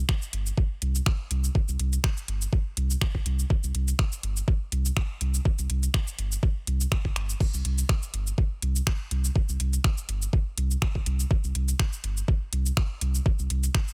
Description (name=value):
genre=minimal techno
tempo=123 BPM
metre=4/4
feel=swing 55% on 16ths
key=unclear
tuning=A4 = 440 Hz
part: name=saturated sub bass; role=bass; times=0.0-13.7 s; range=G1 to C2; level=-28 LUFS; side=equal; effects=tube saturation, sidechain pumping
part: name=electronic kick drum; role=drums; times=0.1-13.9 s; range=none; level=-27 LUFS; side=equal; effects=overdrive
part: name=garage drum kit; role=drums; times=0.1-13.9 s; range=crash cymbal, finger snaps, hi-hat, shaker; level=-35 LUFS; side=equal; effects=overdrive
room=little or no reverb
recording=none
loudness=-27 LUFS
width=mono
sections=0.0-13.9 A section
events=none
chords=none